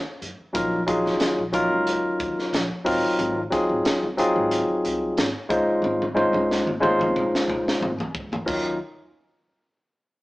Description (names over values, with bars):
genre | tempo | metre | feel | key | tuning
electric jazz fusion | 91 BPM | 4/4 | swing 54% on 16ths | Eb dorian | A4 = 441 Hz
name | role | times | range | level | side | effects
upright bass | bass | 0.0-8.8 s | Ab1 to Gb2 | -34 LUFS | equal | none
crisp fusion drum kit | drums | 0.2-8.6 s | crash cymbal, hi-hat, kick drum, snare drum, toms | -28 LUFS | equal | none
barky tine electric piano | accompaniment | 0.5-8.8 s | Gb3 to C5 | -21 LUFS | left 1 dB | none
room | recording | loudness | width
moderate stone room reverb, RT60 1.1 s | band playing live in one room, small speaker sound | -21 LUFS | side -20 dB against mid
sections
0.0-8.5 A section; 8.5-10.2 B section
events
drum fill 5.8-8.5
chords
0.0 Ebm9; 2.9 Ab13; 5.5 Dbmaj9; 8.5 Ebm9